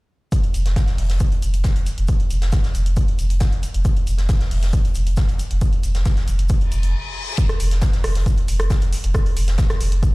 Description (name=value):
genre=driving peak-time techno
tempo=136 BPM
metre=4/4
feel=straight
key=unclear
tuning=A4 = 440 Hz
part: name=big rock drum kit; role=drums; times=0.3-10.1 s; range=hi-hat, shaker, snare drum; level=-36 LUFS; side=left 1 dB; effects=high-pass filter on hats, high-pass filter on snare, high-pass filter on perc, high-pass filter on room
part: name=electronic kick drum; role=drums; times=0.3-10.1 s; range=none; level=-19 LUFS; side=equal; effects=none
part: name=punchy analog drum machine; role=drums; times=0.3-10.1 s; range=hi-hat, rim click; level=-33 LUFS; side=equal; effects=sidechain pumping on hats
part: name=warm sub bass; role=bass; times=0.5-10.0 s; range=F1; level=-21 LUFS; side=equal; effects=overdrive, sidechain pumping, low-pass filter
part: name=reverse cymbal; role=sound effects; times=6.7-7.4 s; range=none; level=-30 LUFS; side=left 5 dB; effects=none
room=little or no reverb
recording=played on a big sound system in a bare room, large studio reverb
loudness=-17 LUFS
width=side -22 dB against mid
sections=0.3-7.4 A section; 7.4-10.1 B section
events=reverse cymbal 6.7-7.4; stop 6.9-7.4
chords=none